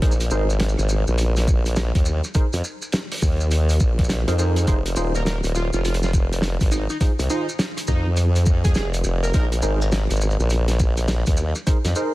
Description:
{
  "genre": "glitch hop",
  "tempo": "103 BPM",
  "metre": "4/4",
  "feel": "swing 63% on 16ths",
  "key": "unclear",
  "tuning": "A4 = 437 Hz",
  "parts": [
    { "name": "tine electric piano", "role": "stabs", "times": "0.0-12.1 s", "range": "Eb4 to C5", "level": "-29 LUFS", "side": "right 1 dB", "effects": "overdrive, ensemble chorus, sidechain pumping, ping-pong delay" },
    { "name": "formant-sweep wobble bass", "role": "bass", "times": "0.0-11.9 s", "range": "Eb1 to F2", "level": "-20 LUFS", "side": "equal", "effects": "chorus" },
    { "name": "electronic kick drum", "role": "drums", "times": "0.0-11.8 s", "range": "none", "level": "-19 LUFS", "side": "equal", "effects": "none" },
    { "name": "warm soul drum kit", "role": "drums", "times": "0.0-12.1 s", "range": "hi-hat, rim click, shaker, snare drum", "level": "-27 LUFS", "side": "equal", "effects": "none" },
    { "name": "plucky unison lead", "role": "melody", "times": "5.2-9.5 s", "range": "Eb4 to Bb4", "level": "-31 LUFS", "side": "right 1 dB", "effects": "ping-pong delay" }
  ],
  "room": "small room ambience",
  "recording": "dense, heavily limited modern master, vinyl crackle",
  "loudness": "-18 LUFS",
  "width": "side -18 dB against mid",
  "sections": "0.0-12.1 A section",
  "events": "none",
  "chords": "0.0 Bb9sus4; 4.7 Fm7; 9.3 Bb9sus4",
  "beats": "| 0.02 0.60 1.18 1.77 | 2.35 2.93 3.51 4.10 | 4.68 5.26 5.84 6.43 | 7.01 7.59 8.17 8.76 | 9.34 9.92 10.50 11.09 | 11.67"
}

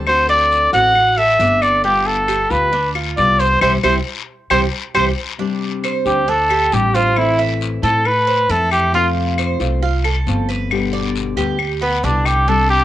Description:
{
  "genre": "latin, Cuban son and guajira",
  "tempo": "135 BPM",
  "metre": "4/4",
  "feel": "straight",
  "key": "C major",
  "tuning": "A4 = 440 Hz",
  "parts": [
    { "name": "nylon-string guitar", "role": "accompaniment", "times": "0.0-12.8 s", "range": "B2 to G4", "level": "-24 LUFS", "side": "left 7 dB", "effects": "cassette tape" },
    { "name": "Cuban tres", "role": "arpeggios", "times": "0.0-12.8 s", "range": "D4 to E5", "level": "-24 LUFS", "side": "right 9 dB", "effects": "cassette tape, plate reverb" },
    { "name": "upright bass", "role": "bass", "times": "0.0-12.8 s", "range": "G1 to A2", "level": "-21 LUFS", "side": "equal", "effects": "none" },
    { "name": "warm trumpet", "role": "melody", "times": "0.1-9.1, 11.8-12.8 s", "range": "B3 to F#5", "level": "-14 LUFS", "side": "equal", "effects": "cassette tape, plate reverb" },
    { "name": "claves", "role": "percussion", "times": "0.1-12.5 s", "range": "none", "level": "-25 LUFS", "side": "left 8 dB", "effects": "none" },
    { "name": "guiro", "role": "percussion", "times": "0.1-12.8 s", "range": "none", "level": "-30 LUFS", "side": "left 9 dB", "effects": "none" }
  ],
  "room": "moderate studio ambience, RT60 0.5 s",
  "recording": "home recording on cassette",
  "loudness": "-14 LUFS",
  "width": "side -13 dB against mid",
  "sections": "0.0-5.4 A section; 5.4-12.8 B section",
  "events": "band accent 3.6-5.4; trumpet solo 5.4-12.8",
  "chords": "0.1 D7; 1.8 G7; 3.6 C; 5.4 Csus2; 7.2 Am; 8.9 F; 10.7 G",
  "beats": "| 0.07 0.51 0.95 1.40 | 1.84 2.29 2.73 3.17 | 3.62 4.06 4.50 4.95 | 5.39 5.84 6.28 6.72 | 7.17 7.61 8.05 8.49 | 8.94 9.38 9.82 10.27 | 10.71 11.15 11.59 12.04 | 12.48"
}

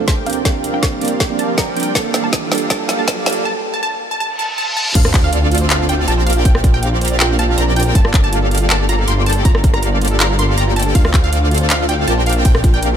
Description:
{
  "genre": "future bass",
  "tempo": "160 BPM",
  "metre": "4/4",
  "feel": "half-time",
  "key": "G minor",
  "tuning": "A4 = 440 Hz",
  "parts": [
    { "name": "wide unison pluck", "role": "melody", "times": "0.0-13.0 s", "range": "F5 to C6", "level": "-23 LUFS", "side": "right 1 dB", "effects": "sidechain pumping, dub echo" },
    { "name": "glassy digital keys", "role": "accompaniment", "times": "0.0-3.4 s", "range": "F3 to A4", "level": "-23 LUFS", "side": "right 7 dB", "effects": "chorus, sidechain pumping, digital delay" },
    { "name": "shimmering ambient pad", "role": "sustained chords", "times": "0.0-3.4 s", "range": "D2 to C5", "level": "-32 LUFS", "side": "equal", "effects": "chorus, built-in reverb, sidechain pumping" },
    { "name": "big bright polysynth", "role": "riff", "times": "0.0-13.0 s", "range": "Bb3 to G5", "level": "-21 LUFS", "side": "equal", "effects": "wide subtle chorus, sidechain pumping" },
    { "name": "riser, reverse cymbal and sub drop", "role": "sound effects", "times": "2.2-6.5 s", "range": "none", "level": "-26 LUFS", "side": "equal", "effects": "none" },
    { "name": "electronic kick drum", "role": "drums", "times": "0.1-12.7 s", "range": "none", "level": "-14 LUFS", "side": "equal", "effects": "small room ambience" },
    { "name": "trap drum kit", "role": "drums", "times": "0.1-12.9 s", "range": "crash cymbal, handclaps, hi-hat, ride cymbal, rim click, snare drum", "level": "-20 LUFS", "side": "equal", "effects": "small room ambience" },
    { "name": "soft round pluck", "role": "arpeggios", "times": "5.0-13.0 s", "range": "F4 to A5", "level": "-25 LUFS", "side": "right 5 dB", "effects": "chorus, sidechain pumping, digital delay" },
    { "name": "wide detuned saw bass", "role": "bass", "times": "5.0-13.0 s", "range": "G1 to D2", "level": "-16 LUFS", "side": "equal", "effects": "chorus, sidechain pumping" }
  ],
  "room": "light reverb, digital ambience",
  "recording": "high-pass filter",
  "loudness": "-13 LUFS",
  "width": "side -9 dB against mid",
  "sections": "0.0-5.0 A section; 5.0-13.0 B section",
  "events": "build-up 0.0-5.0; drum fill 0.0-3.5; filter sweep on synth pluck 0.0-5.0; filter sweep 0.0-5.0; riser 2.2-3.5; break 3.5-5.0; reverse cymbal 4.4-5.0; drop 5.0-13.0; impact 5.0-6.5",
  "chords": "0.3 Bb69; 2.0 Gm9; 5.0 Dm7; 6.3 Bb69; 8.0 Gm9; 11.0 Dm7; 12.3 Bb69",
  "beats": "0.08 | 0.45 0.83 1.20 1.58 | 1.95 2.33 2.70 3.08 | 3.45 3.83 4.20 4.58 | 4.95 5.33 5.70 6.08 | 6.45 6.83 7.20 7.58 | 7.95 8.33 8.70 9.08 | 9.45 9.83 10.20 10.58 | 10.95 11.33 11.70 12.08 | 12.45 12.83"
}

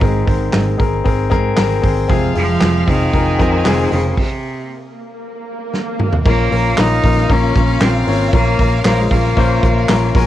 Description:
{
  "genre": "piano-driven pop",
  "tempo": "116 BPM",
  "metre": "4/4",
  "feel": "straight",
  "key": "Bb minor",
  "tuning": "A4 = 438 Hz",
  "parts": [
    { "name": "bright cello", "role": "melody", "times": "0.0-10.2 s", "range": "Ab2 to Eb4", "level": "-20 LUFS", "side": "right 1 dB", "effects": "cassette tape" },
    { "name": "warm baby grand piano", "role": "accompaniment", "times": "0.0-10.3 s", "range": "Ab2 to Db5", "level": "-18 LUFS", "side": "left 6 dB", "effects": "none" },
    { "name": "fingerpicked steel-string acoustic guitar", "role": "riff", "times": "0.0-4.2 s", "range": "F2 to Bb4", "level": "-25 LUFS", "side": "right 10 dB", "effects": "none" },
    { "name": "vintage muted fingered electric bass", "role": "bass", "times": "0.0-10.3 s", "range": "F1 to Ab2", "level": "-18 LUFS", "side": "right 1 dB", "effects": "none" },
    { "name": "natural country drum kit", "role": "drums", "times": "0.0-10.3 s", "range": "crash cymbal, handclaps, hi-hat, kick drum, snare drum, toms", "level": "-17 LUFS", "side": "right 1 dB", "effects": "cassette tape" },
    { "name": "bright studio violin section", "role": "second line", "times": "2.1-10.3 s", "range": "F4 to Ab5", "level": "-27 LUFS", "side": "right 2 dB", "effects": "tape echo" },
    { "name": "swell", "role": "sound effects", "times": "4.7-6.3 s", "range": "none", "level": "-26 LUFS", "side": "right 2 dB", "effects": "none" }
  ],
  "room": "light reverb",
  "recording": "home recording on cassette",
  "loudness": "-12 LUFS",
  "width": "side -13 dB against mid",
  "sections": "0.0-6.3 A section; 6.3-10.3 B section",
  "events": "stop 4.2-6.3; swell 4.7-6.3; drum fill 5.7-6.3",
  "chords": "0.0 Abadd9; 2.1 Fm; 6.3 Bbm",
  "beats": "| 0.02 0.54 1.06 1.58 | 2.10 2.62 3.14 3.66 | 4.18 4.70 5.22 5.74 | 6.25 6.77 7.29 7.81 | 8.33 8.85 9.37 9.89"
}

